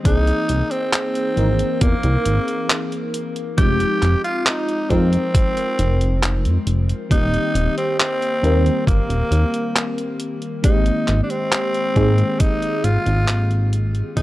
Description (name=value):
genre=vaporwave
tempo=68 BPM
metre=4/4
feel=straight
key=unclear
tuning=A4 = 442 Hz
part: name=FM electric piano with soft pad layer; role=accompaniment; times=0.0-14.2 s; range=Eb3 to Bb4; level=-24 LUFS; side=left 1 dB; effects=wide subtle chorus, tape echo
part: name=growling tenor saxophone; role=melody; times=0.1-14.2 s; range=Bb3 to G4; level=-23 LUFS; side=equal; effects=tape echo
part: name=chorused synth bass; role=bass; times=0.1-14.2 s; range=Eb1 to Ab2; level=-18 LUFS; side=equal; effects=tube saturation
part: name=detuned 8-bit digital drum machine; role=drums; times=0.1-14.2 s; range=handclaps, hi-hat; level=-23 LUFS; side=equal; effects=none
part: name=electronic kick drum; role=drums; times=0.1-14.2 s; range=none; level=-18 LUFS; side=equal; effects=none
room=digital ambience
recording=dry, gritty hardware recording, cassette tape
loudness=-16 LUFS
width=side -16 dB against mid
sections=0.0-14.2 A section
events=fade-out 11.8-14.2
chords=0.1 C7alt; 3.6 Fm7; 7.1 Eb6; 10.6 Abmaj9